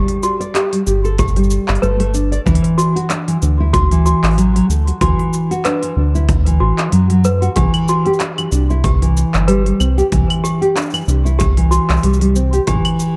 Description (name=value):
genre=folktronica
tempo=94 BPM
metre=4/4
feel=swing 56% on 16ths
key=unclear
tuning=A4 = 440 Hz
part: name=toy piano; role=second line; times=0.0-13.0 s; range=F#4 to B4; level=-25 LUFS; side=equal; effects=vintage 12-bit sampler grit, delay
part: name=nylon-string guitar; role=arpeggios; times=0.0-13.2 s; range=E3 to D5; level=-19 LUFS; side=equal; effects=delay
part: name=round analog bass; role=bass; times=0.0-12.8 s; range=G1 to F#2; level=-17 LUFS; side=equal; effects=none
part: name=organic electronic drum kit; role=drums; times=0.1-13.1 s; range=cabasa, claves, handclaps, hi-hat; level=-26 LUFS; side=equal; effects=none
part: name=kick drum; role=drums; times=1.2-12.8 s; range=none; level=-21 LUFS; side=equal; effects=none
room=light reverb, small room ambience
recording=dark, warm production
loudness=-15 LUFS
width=mono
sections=0.0-13.2 A section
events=none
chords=0.0 Gsus2; 2.5 Dadd9; 7.6 Cadd9